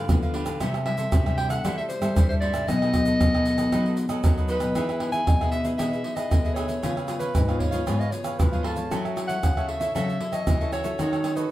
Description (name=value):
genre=samba and choro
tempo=116 BPM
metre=4/4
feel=straight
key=E major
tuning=A4 = 440 Hz
part: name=cavaquinho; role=accompaniment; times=0.0-11.5 s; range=D4 to F5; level=-33 LUFS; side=right 3 dB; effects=none
part: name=nylon-string guitar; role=accompaniment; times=0.0-11.5 s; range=F#2 to A4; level=-31 LUFS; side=left 4 dB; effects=none
part: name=nylon-string guitar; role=bass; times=0.0-11.4 s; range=G#2 to G3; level=-28 LUFS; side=equal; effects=none
part: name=tube shaker, surdo, pandeiro and tamborim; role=percussion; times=0.1-11.5 s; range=none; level=-25 LUFS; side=right 1 dB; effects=none
part: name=mellow soprano saxophone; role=melody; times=0.9-11.5 s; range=A4 to G#5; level=-29 LUFS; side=equal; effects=none
room=wet studio reverb, RT60 0.6 s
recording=heard from further back in the room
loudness=-22 LUFS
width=side -14 dB against mid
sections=0.0-4.8 A section; 4.8-11.5 B section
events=none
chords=0.0 G7; 0.6 C6; 2.7 B7; 4.8 Emaj7; 6.8 C#7; 8.9 F#m7; 11.0 D#m7b5